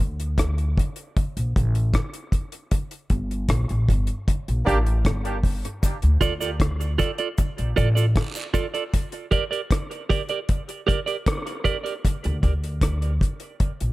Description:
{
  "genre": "dub reggae",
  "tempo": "77 BPM",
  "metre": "4/4",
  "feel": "straight",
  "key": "D minor",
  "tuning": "A4 = 443 Hz",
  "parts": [
    { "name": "upright bass", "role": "bass", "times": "0.0-13.9 s", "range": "G1 to D2", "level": "-22 LUFS", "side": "equal", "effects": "none" },
    { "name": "deep reggae drum kit", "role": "drums", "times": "0.2-13.9 s", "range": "hi-hat, kick drum, rim click", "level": "-23 LUFS", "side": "equal", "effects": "none" },
    { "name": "warm horn section", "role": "second line", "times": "4.7-4.8 s", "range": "Bb3 to G4", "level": "-29 LUFS", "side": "right 2 dB", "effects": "dub echo" },
    { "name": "cabasa and guiro", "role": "percussion", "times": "5.8-8.7 s", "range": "none", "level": "-39 LUFS", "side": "right 6 dB", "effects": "dub echo" },
    { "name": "clean electric guitar", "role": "accompaniment", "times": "6.2-11.9 s", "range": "F4 to D5", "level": "-27 LUFS", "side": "right 6 dB", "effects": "dub echo" }
  ],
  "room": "studio ambience",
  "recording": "none",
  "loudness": "-21 LUFS",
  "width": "side -18 dB against mid",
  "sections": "0.0-13.9 A section",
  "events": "break 0.0-5.8, 8.9-13.9",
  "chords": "0.0 D5; 2.7 Gm; 5.8 Dm; 8.9 Gm; 12.0 D5"
}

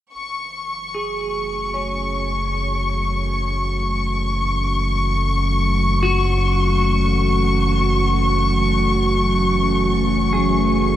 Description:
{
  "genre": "ambient",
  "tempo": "77 BPM",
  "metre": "4/4",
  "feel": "straight",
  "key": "F# minor",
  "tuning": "A4 = 439 Hz",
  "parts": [
    { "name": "warbly tape-like pad", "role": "sustained chords", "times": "1.1-11.0 s", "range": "E3 to F#4", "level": "-22 LUFS", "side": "right 1 dB", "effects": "chorus, built-in reverb" },
    { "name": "round analog bass", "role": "bass", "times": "0.1-11.0 s", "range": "F#1", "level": "-21 LUFS", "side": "equal", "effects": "none" },
    { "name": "clear chamber violin section", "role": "texture", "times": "0.1-11.0 s", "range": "C#6", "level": "-22 LUFS", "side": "left 3 dB", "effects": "none" },
    { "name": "clean electric guitar", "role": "arpeggios", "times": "0.9-11.0 s", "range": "C#4 to G#4", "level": "-28 LUFS", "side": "left 1 dB", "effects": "phaser, diffuse ambient delay" }
  ],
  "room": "wet shimmer reverb, RT60 7.8 s",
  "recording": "cassette tape",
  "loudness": "-17 LUFS",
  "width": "side -12 dB against mid",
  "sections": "0.1-11.0 A section",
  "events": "fade-in on ambient pad 0.1-11.0; fade-in on clean electric guitar 0.1-11.0",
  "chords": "0.1 F#m7"
}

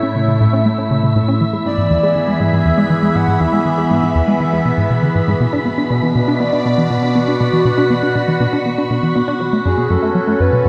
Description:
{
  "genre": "ambient, sequencer-driven space music",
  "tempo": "120 BPM",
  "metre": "4/4",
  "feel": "straight",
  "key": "unclear",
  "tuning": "A4 = 440 Hz",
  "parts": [
    { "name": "breathy flute-like synth lead", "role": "melody", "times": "0.0-5.1, 9.7-10.7 s", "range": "G#4 to F#5", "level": "-24 LUFS", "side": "equal", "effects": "analog chorus, shimmer reverb, tape echo" },
    { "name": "phased analog pad", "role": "sustained chords", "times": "0.0-10.7 s", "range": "A2 to B5", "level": "-19 LUFS", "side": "equal", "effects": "phaser, chorus, shimmer reverb" },
    { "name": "plucky analog bass", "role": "riff", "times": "0.0-10.7 s", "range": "E2 to D4", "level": "-19 LUFS", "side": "equal", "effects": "tape echo" },
    { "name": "wind-like tuned noise texture", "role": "texture", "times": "0.0-10.7 s", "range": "B5", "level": "-30 LUFS", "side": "equal", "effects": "built-in reverb, shimmer reverb" }
  ],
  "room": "wet plate reverb, RT60 3.4 s",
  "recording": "dreamy mix soaked in reverb",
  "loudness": "-15 LUFS",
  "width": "mono",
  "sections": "0.0-10.7 A section",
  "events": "filter sweep on analog synth bass 0.0-10.7",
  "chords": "0.0 A; 1.4 E; 5.4 Bm; 9.4 F#m"
}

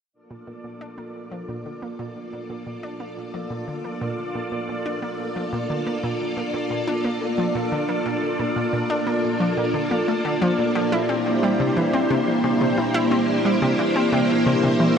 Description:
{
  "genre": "ambient",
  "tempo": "89 BPM",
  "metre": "4/4",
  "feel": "straight",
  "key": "unclear",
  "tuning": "A4 = 445 Hz",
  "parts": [
    { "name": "string machine, full ensemble", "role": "sustained chords", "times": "0.1-15.0 s", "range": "Bb3 to D5", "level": "-23 LUFS", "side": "equal", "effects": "ensemble chorus, shimmer reverb" },
    { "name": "bubbling stepped-filter texture", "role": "texture", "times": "0.1-15.0 s", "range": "D4 to D5", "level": "-30 LUFS", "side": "equal", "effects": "chorus, built-in reverb, shimmer reverb" },
    { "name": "analog pluck", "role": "riff", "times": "0.3-14.9 s", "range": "Bb2 to E4", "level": "-26 LUFS", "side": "equal", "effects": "chorus, tape echo, shimmer reverb" }
  ],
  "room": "wet huge ambient reverb, RT60 9.2 s",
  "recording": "none",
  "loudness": "-20 LUFS",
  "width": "side -7 dB against mid",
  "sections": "0.1-15.0 A section",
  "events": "fade-in on synth arpeggio sound 0.1-15.0; fade-in on string machine 0.1-15.0; fade-in on synth texture 0.1-15.0",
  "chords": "0.1 Bbmaj7; 10.9 C7"
}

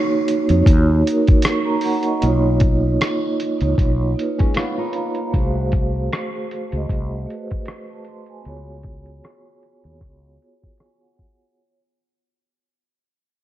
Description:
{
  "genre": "lo-fi hip hop",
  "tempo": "77 BPM",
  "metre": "4/4",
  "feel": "swing 56% on 16ths",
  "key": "unclear",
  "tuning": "A4 = 440 Hz",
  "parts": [
    { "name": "vibraphone with soft mallets", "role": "accompaniment", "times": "0.0-11.8 s", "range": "A3 to Db6", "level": "-21 LUFS", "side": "right 2 dB", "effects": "cassette tape" },
    { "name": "dusty soul sampler-style drum kit", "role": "drums", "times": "0.3-11.4 s", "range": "hi-hat, kick drum, rim click", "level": "-19 LUFS", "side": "equal", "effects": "overdrive" },
    { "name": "mellow fretless electric bass", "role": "bass", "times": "0.5-10.4 s", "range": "B1 to F2", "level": "-20 LUFS", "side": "equal", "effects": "none" },
    { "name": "flamenco guitar", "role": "second line", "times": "4.4-5.3 s", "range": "Ab3 to E#4", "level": "-30 LUFS", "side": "left 4 dB", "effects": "analog delay" }
  ],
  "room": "light reverb, digital ambience",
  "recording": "cassette tape, low-pass filter",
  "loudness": "-17 LUFS",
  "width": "side -13 dB against mid",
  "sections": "0.0-11.6 A section",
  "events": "fade-out 0.0-11.6; filter sweep 0.0-11.6",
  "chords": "0.0 Ebm7; 2.2 Bmaj9#11; 5.3 Ab7b9/C; 8.5 Db7sus4"
}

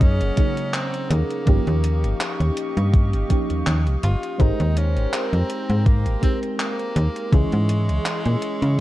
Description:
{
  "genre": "vaporwave",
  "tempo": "82 BPM",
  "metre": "4/4",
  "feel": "swing 54% on 16ths",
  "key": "Ab major",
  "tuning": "A4 = 442 Hz",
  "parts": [
    { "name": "bright tenor saxophone", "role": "melody", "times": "0.0-8.8 s", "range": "Ab3 to F4", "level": "-30 LUFS", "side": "equal", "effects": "tape echo" },
    { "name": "mellow FM electric piano", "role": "accompaniment", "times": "0.0-8.8 s", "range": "Db3 to C5", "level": "-27 LUFS", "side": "right 1 dB", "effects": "wide subtle chorus" },
    { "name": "warm symphonic string section", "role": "sustained chords", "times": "0.0-8.8 s", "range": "Ab3 to Db6", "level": "-36 LUFS", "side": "right 1 dB", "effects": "none" },
    { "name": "slap-like FM bass", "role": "bass", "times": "0.0-8.8 s", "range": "Gb1 to Db3", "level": "-20 LUFS", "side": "equal", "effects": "tube saturation" },
    { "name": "electronic kick drum", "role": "drums", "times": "0.0-7.5 s", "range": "none", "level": "-18 LUFS", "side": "equal", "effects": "overdrive" },
    { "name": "gated 80s digital drum machine", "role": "drums", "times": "0.0-8.8 s", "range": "handclaps, hi-hat", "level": "-29 LUFS", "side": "equal", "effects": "gated reverb, overdrive" }
  ],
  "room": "digital ambience",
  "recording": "dark, warm production",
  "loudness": "-18 LUFS",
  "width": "side -15 dB against mid",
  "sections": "0.0-8.8 A section",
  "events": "none",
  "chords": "0.0 Gb69; 1.5 Eb9/G; 4.4 Abmaj9; 7.3 Dbm"
}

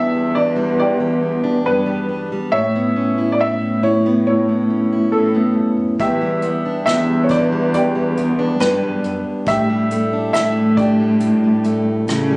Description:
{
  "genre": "acoustic folk-pop ballad",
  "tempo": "69 BPM",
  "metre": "4/4",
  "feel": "straight",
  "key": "unclear",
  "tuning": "A4 = 440 Hz",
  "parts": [
    { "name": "clear upright piano", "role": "melody", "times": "0.0-12.4 s", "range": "E4 to E5", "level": "-20 LUFS", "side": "equal", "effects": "none" },
    { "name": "fingerpicked plugged-in steel-string acoustic guitar", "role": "accompaniment", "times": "0.0-12.4 s", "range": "E2 to E4", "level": "-20 LUFS", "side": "equal", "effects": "none" },
    { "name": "dark cello", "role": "bass", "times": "0.0-12.4 s", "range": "E2 to C#3", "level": "-18 LUFS", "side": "equal", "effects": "none" },
    { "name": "vintage brush drum kit", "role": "drums", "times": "6.0-12.3 s", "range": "hi-hat, kick drum, rim click", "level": "-26 LUFS", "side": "equal", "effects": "none" }
  ],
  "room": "little or no reverb",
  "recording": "recorded on a phone in the room, studio reverb, compression",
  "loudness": "-14 LUFS",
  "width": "side -28 dB against mid",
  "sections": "0.0-12.4 A section",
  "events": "none",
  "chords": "0.0 Em7; 2.5 Aadd9; 6.0 Em7; 9.5 A7sus4"
}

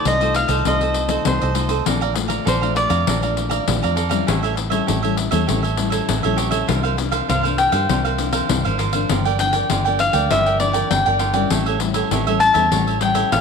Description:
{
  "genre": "samba and choro",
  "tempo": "100 BPM",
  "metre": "4/4",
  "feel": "straight",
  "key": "unclear",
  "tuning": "A4 = 436 Hz",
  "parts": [
    { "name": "cavaquinho", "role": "melody", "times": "0.0-3.3, 7.3-13.4 s", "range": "C5 to A5", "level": "-20 LUFS", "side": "left 2 dB", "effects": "slapback echo" },
    { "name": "cavaquinho", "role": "accompaniment", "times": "0.0-13.4 s", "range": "F4 to Bb5", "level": "-23 LUFS", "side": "right 11 dB", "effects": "none" },
    { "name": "nylon-string guitar", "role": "accompaniment", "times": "0.0-13.4 s", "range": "G2 to F4", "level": "-26 LUFS", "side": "left 10 dB", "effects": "none" },
    { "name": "fingered electric bass", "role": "bass", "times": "0.1-13.4 s", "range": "G1 to G2", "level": "-23 LUFS", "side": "right 1 dB", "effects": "none" },
    { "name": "pandeiro", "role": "percussion", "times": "0.1-13.4 s", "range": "none", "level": "-24 LUFS", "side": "left 10 dB", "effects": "none" }
  ],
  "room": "moderate echo chamber reverb, RT60 1.6 s, small room ambience",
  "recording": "1960s-style stereo with parts hard left and right",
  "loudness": "-16 LUFS",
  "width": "side -6 dB against mid",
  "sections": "0.0-13.4 A section",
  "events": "cavaquinho solo 0.0-13.4",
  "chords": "0.0 F7/C; 1.9 Bbmaj7; 4.3 A7; 6.7 C9sus4; 9.1 Gm7; 11.5 A7"
}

